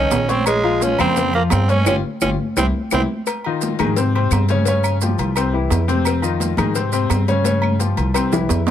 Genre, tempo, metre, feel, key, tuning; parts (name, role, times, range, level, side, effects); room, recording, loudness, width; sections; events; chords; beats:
latin, salsa; 172 BPM; 4/4; straight; F minor; A4 = 438 Hz
raspy tenor saxophone; melody; 0.0-3.0 s; Ab3 to Db4; -20 LUFS; right 3 dB
bright baby grand piano; accompaniment; 0.0-8.7 s; C3 to Db6; -21 LUFS; left 5 dB
upright bass; bass; 0.0-8.7 s; G1 to Ab2; -20 LUFS; equal
congas; percussion; 0.1-8.7 s; -26 LUFS; equal
cowbell and bongos; percussion; 0.1-8.7 s; -29 LUFS; left 10 dB
maracas; percussion; 0.1-8.7 s; -30 LUFS; right 11 dB
timbales and agogo bells; percussion; 0.1-8.7 s; -26 LUFS; right 4 dB
claves; percussion; 0.5-8.3 s; -28 LUFS; left 7 dB
little or no reverb; close, detailed microphones; -16 LUFS; side -10 dB against mid
0.0-3.3 A section; 3.3-8.7 B section
band accent 1.9-3.3; drum fill 2.4-3.3, 7.5-8.7
0.5 Bbm9; 1.9 Db; 2.6 C; 3.3 Fm7; 4.0 Ab; 4.7 Dbmaj7#11; 5.4 C; 6.1 Fm7; 6.8 Ab; 7.5 Dbmaj7#11; 8.2 C
0.12 | 0.47 0.82 1.17 1.52 | 1.87 2.22 2.57 2.92 | 3.27 3.62 3.97 4.32 | 4.67 5.01 5.36 5.71 | 6.06 6.41 6.76 7.11 | 7.46 7.81 8.16 8.51